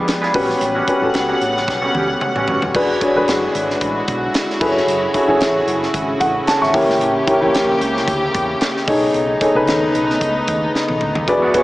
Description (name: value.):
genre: polished 1980s jazz-funk pop.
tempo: 112 BPM.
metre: 4/4.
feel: swing 54% on 16ths.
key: unclear.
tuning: A4 = 440 Hz.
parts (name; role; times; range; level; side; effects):
dark grand piano; accompaniment; 0.0-11.6 s; C#4 to C#6; -17 LUFS; equal; wide subtle chorus.
dark studio string section; sustained chords; 0.0-11.6 s; C#3 to F#5; -21 LUFS; equal; none.
electric guitar through a small old amp; riff; 0.1-2.7, 11.3-11.6 s; G3 to B4; -23 LUFS; right 1 dB; lush chorus.
tight funk drum kit; drums; 0.1-11.6 s; crash cymbal, hi-hat, kick drum, snare drum, toms; -24 LUFS; equal; none.
woody fretless electric bass; bass; 0.3-11.5 s; D#1 to E2; -29 LUFS; equal; none.
room: wet huge ambient reverb, RT60 4.0 s.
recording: dreamy mix soaked in reverb, small speaker sound.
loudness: -15 LUFS.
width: side -17 dB against mid.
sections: 0.0-2.7 A section; 2.7-11.6 A section.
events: drum fill 1.7-2.7, 10.7-11.3.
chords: 0.3 A13; 2.7 E9; 4.6 F#m7; 6.7 A7b9; 8.9 B13.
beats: 0.08 | 0.61 1.15 1.68 2.21 | 2.75 3.28 3.81 4.34 | 4.88 5.41 5.95 6.48 | 7.01 7.54 8.08 8.61 | 9.14 9.68 10.21 10.74 | 11.28.